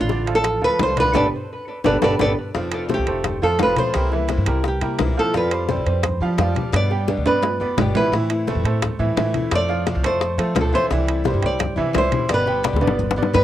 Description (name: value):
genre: latin, Cuban son and guajira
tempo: 172 BPM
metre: 4/4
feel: straight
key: unclear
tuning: A4 = 441 Hz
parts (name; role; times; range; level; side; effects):
- nylon-string guitar; melody; 0.0-13.4 s; F4 to D5; -22 LUFS; equal; cassette tape, tape echo
- picked acoustic archtop guitar; accompaniment; 0.0-13.4 s; B2 to G4; -28 LUFS; left 6 dB; cassette tape, plate reverb
- clear grand piano; arpeggios; 0.0-13.4 s; D3 to G5; -26 LUFS; right 6 dB; cassette tape, plate reverb
- upright bass; bass; 0.0-13.4 s; F1 to F3; -23 LUFS; equal; none
- bongos; percussion; 0.1-13.4 s; none; -24 LUFS; left 7 dB; none
- congas; percussion; 0.1-13.4 s; none; -30 LUFS; left 4 dB; none
- timbales; percussion; 0.1-13.4 s; none; -27 LUFS; right 7 dB; none
room: moderate booth ambience, RT60 0.2 s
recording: home recording on cassette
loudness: -17 LUFS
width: side -12 dB against mid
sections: 0.0-2.5 A section; 2.5-13.4 B section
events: band accent 1.1-2.5; drum fill 1.5-2.5, 7.1-8.1, 12.7-13.4; nylon-string guitar solo 2.5-13.4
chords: 0.0 Dm; 1.1 Gadd9; 2.5 F; 3.9 C7; 5.3 Fsus2; 6.7 G; 8.1 Am; 9.5 F; 10.9 C; 12.3 G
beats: 0.10 0.45 0.80 | 1.15 1.50 1.85 2.20 | 2.55 2.90 3.25 3.60 | 3.94 4.29 4.64 4.99 | 5.34 5.69 6.04 6.39 | 6.74 7.08 7.43 7.78 | 8.13 8.48 8.82 9.17 | 9.52 9.87 10.22 10.56 | 10.91 11.26 11.61 11.96 | 12.30 12.65 13.00 13.35